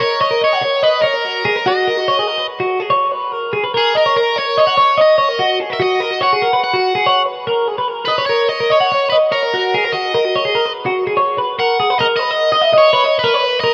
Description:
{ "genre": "rock", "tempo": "145 BPM", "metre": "5/4", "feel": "straight", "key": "B major", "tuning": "A4 = 441 Hz", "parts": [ { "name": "biting overdriven guitar", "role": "melody", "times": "0.0-13.7 s", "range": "G#4 to F#5", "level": "-19 LUFS", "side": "equal", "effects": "none" }, { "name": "twelve-string electric guitar", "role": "arpeggios", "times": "0.0-13.7 s", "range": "F#4 to F#5", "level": "-17 LUFS", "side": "equal", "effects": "none" } ], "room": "moderate lush hall reverb, RT60 2.8 s", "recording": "rough home demo mix", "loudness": "-15 LUFS", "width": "mono", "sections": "0.0-12.0 A section; 12.0-13.7 B section", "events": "none", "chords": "0.0 Bmaj13; 3.7 D#m7; 5.8 G#m9; 7.9 Bmaj13; 12.0 Bmaj7" }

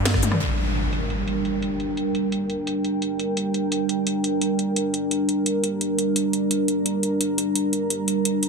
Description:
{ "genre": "dark technical drum and bass", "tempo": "172 BPM", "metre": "4/4", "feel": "straight", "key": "G minor", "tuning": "A4 = 442 Hz", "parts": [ { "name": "dark analog pad", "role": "sustained chords", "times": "0.0-8.5 s", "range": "G3 to Bb5", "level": "-22 LUFS", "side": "right 1 dB", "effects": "chorus, sidechain pumping" }, { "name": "drum and bass drum kit", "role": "drums", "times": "0.1-8.5 s", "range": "hi-hat, rim click, shaker, snare drum, toms", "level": "-26 LUFS", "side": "left 1 dB", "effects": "low-pass filter on hats, low-pass filter on perc, low-pass filter on snare, low-pass filter on toms, low-pass filter on room" }, { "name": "impact", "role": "sound effects", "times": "0.4-1.8 s", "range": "none", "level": "-27 LUFS", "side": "equal", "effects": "none" } ], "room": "moderate lush hall reverb, RT60 1.7 s", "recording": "dense, heavily limited modern master", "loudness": "-21 LUFS", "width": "side -4 dB against mid", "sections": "0.4-8.5 A section", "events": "band accent 0.1; drum fill 0.2; impact 0.4-1.8; filter sweep on drum 0.4-8.5", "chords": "0.4 Gm" }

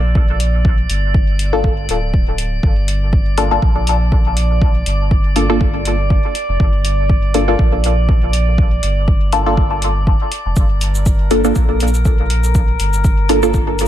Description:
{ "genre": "dub techno", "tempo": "121 BPM", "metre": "4/4", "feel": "swing 55% on 16ths", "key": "G minor", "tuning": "A4 = 440 Hz", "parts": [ { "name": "soft dub sub bass", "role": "bass", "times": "0.0-13.9 s", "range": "D1 to Bb1", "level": "-17 LUFS", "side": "equal", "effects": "sidechain pumping" }, { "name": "drifting glass-harmonics texture", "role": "texture", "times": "0.0-13.9 s", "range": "Bb4 to D5", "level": "-24 LUFS", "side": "right 2 dB", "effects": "chorus, built-in reverb, sidechain pumping" }, { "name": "electronic kick drum", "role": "drums", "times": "0.2-13.7 s", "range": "none", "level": "-14 LUFS", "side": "equal", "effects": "none" }, { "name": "electronic hi-hat and shaker", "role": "drums", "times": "0.4-13.9 s", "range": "none", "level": "-25 LUFS", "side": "left 2 dB", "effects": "none" }, { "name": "filtered dub chord stab", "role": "stabs", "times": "1.5-13.5 s", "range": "Bb3 to A4", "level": "-19 LUFS", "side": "left 1 dB", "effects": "phaser, sidechain pumping, dub echo" } ], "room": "little or no reverb", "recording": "none", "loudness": "-12 LUFS", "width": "side -12 dB against mid", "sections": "0.0-13.9 A section", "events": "none", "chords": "0.0 Gm" }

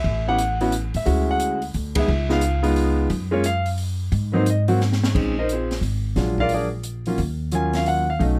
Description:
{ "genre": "jazz piano trio", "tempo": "177 BPM", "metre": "3/4", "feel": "swing 64% on 8ths", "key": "Bb minor from 5.1 s", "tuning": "A4 = 436 Hz", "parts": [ { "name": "clear concert grand piano", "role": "melody", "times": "0.0-8.4 s", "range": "Gb3 to Ab5", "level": "-24 LUFS", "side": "equal", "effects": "none" }, { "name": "upright bass", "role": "bass", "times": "0.0-8.4 s", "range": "Ab1 to A2", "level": "-25 LUFS", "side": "equal", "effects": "none" }, { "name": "open jazz drum kit", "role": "drums", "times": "0.4-8.3 s", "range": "crash cymbal, hi-hat, kick drum, ride cymbal, snare drum", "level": "-32 LUFS", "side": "equal", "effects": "none" } ], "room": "little or no reverb", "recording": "none", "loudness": "-22 LUFS", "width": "mono", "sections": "0.0-5.1 A section; 5.1-8.4 B section", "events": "band accent 1.9; drum fill 4.8-5.1", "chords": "0.0 A; 1.1 Dmaj9#11; 2.1 Db9; 3.1 Gbmaj7(no3); 4.1 Ab9; 5.1 Bb9sus4; 6.2 Bb7b13; 7.2 Ebm9" }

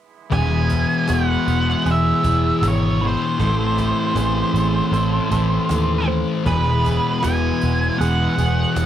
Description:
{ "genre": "rock, shoegaze and dream pop", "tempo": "78 BPM", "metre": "4/4", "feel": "straight", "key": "E major", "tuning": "A4 = 439 Hz", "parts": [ { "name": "octave-fuzz lead guitar", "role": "melody", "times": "0.3-8.9 s", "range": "B4 to G#5", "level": "-23 LUFS", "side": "right 2 dB", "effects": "distortion, cassette tape, tape echo" }, { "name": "direct-recorded clean electric guitar", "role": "arpeggios", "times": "0.3-8.9 s", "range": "F#4 to B5", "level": "-31 LUFS", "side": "right 11 dB", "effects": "analog chorus, cassette tape, tape echo" }, { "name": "biting overdriven guitar", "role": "riff", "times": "0.3-8.9 s", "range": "A2 to E4", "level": "-27 LUFS", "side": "right 8 dB", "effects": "reverse reverb, cassette tape" }, { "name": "thick fuzz guitar", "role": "riff", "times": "0.3-8.9 s", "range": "E2 to A3", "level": "-21 LUFS", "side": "left 6 dB", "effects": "distortion, lush chorus, cassette tape" }, { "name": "vintage muted picked electric bass", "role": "bass", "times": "0.3-8.9 s", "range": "E1 to D#2", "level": "-21 LUFS", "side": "right 1 dB", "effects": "none" }, { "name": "cajon", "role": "drums", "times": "0.3-8.9 s", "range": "none", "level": "-32 LUFS", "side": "right 1 dB", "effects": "cassette tape" }, { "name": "tambourine", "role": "percussion", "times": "0.7-8.9 s", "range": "none", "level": "-41 LUFS", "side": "right 12 dB", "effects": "none" } ], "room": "light reverb", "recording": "home recording on cassette", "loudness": "-16 LUFS", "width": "side -10 dB against mid", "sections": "0.3-8.9 A section", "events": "none", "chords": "0.3 Eadd9; 3.4 Am; 6.5 Eadd9" }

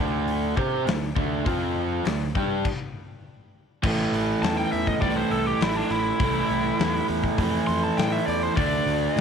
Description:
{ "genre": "blues rock power trio and southern rock", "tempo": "101 BPM", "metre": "4/4", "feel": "straight", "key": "A minor", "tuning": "A4 = 441 Hz", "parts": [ { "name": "raw garage guitar", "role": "riff", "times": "0.0-9.2 s", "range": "A2 to C5", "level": "-24 LUFS", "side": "right 2 dB", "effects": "overdrive" }, { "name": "growling fingered electric bass", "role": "bass", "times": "0.0-9.2 s", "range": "A1 to C3", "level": "-31 LUFS", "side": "equal", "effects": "overdrive" }, { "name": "big rock drum kit", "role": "drums", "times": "0.3-9.2 s", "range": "crash cymbal, hi-hat, kick drum, snare drum", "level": "-28 LUFS", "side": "left 3 dB", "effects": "none" }, { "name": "biting lead guitar", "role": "melody", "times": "4.4-9.2 s", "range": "D4 to C6", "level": "-28 LUFS", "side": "left 1 dB", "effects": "overdrive" } ], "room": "studio reverb", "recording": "1960s-style stereo", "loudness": "-22 LUFS", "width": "side -7 dB against mid", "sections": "0.0-3.8 A section; 3.8-9.2 B section", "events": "stop 2.6-3.8; lead electric guitar solo 3.8-9.2", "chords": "0.0 D5; 1.5 F5; 2.1 D5; 3.8 Am; 8.6 D5" }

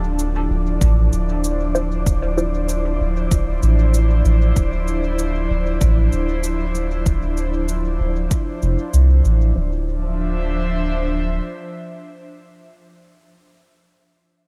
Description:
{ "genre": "ambient dub", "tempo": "96 BPM", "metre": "4/4", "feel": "straight", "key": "D minor", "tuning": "A4 = 440 Hz", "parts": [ { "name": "airy breathy pad", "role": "sustained chords", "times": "0.0-12.8 s", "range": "F3 to E5", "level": "-28 LUFS", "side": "equal", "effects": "chorus, vintage 12-bit sampler grit" }, { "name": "felt-muted upright piano", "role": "arpeggios", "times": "0.0-1.6 s", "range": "D4 to A5", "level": "-43 LUFS", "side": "equal", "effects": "none" }, { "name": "soft dub sub bass", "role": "bass", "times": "0.0-11.4 s", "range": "D1 to C2", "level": "-20 LUFS", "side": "equal", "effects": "none" }, { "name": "wind-like tuned noise texture", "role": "texture", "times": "0.0-9.6 s", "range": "D5", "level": "-36 LUFS", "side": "equal", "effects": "built-in reverb" }, { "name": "cabasa", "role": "drums", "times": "0.2-9.4 s", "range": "none", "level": "-35 LUFS", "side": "equal", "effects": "overdrive, studio ambience, dub echo" }, { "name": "electronic kick drum", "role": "drums", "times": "0.8-8.4 s", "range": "none", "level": "-22 LUFS", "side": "equal", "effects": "overdrive, studio ambience" }, { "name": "filtered dub chord stab", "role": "stabs", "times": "1.7-2.5, 6.7-13.5 s", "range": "E4 to C5", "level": "-30 LUFS", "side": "equal", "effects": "phaser, dub echo" } ], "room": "digital ambience", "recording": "none", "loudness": "-19 LUFS", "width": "mono", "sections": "0.0-9.6 A section; 9.6-12.1 B section", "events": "filter sweep on synth stab 0.0-9.6", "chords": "0.0 Dm9" }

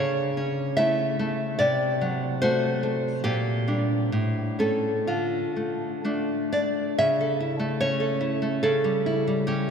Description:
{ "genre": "romantic piece for solo classical guitar", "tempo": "62-75 BPM", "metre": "2/4", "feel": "rubato", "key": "unclear", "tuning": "A4 = 438 Hz", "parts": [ { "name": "nylon-string guitar", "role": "solo", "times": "0.0-9.7 s", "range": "A2 to E5", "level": "-23 LUFS", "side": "equal", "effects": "slapback echo" } ], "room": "wet cathedral reverb, RT60 5.0 s", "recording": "in a vast, echoing space", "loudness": "-23 LUFS", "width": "side -6 dB against mid", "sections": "0.0-7.0 A section; 7.0-9.7 B section", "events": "none", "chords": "0.0 A/C#; 1.6 D7/C; 3.3 Gm/Bb; 4.1 A; 5.1 Dm; 7.0 A/C#; 8.6 A7/C#" }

